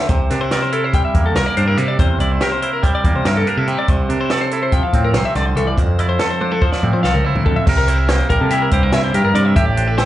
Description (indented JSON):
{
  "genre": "math rock and midwest emo",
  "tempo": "285 BPM (eighths)",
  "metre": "9/8",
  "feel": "straight",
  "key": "unclear",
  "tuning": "A4 = 445 Hz",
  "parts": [
    { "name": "twangy electric guitar", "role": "accompaniment", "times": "0.0-10.1 s", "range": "F2 to C5", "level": "-20 LUFS", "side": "right 4 dB", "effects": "slapback echo" },
    { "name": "twelve-string electric guitar", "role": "arpeggios", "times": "0.0-10.1 s", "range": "G4 to G5", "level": "-21 LUFS", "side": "left 5 dB", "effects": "slapback echo" },
    { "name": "growling picked electric bass", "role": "bass", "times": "0.1-10.1 s", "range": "A1 to F3", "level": "-18 LUFS", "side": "equal", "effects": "overdrive" },
    { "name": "compact cocktail drum kit", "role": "drums", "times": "0.1-10.1 s", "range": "crash cymbal, hi-hat, kick drum, snare drum, toms", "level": "-18 LUFS", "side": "equal", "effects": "none" }
  ],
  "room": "small room ambience",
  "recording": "live gig heard through the venue's PA, club reverb, nothing above 10.8 kHz",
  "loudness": "-14 LUFS",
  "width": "side -13 dB against mid",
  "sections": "0.0-7.7 A section; 7.7-10.1 B section",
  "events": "drum fill 6.4-7.7",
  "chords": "0.1 C7; 3.9 Fmaj7/C; 5.8 Fmaj7; 7.7 C7"
}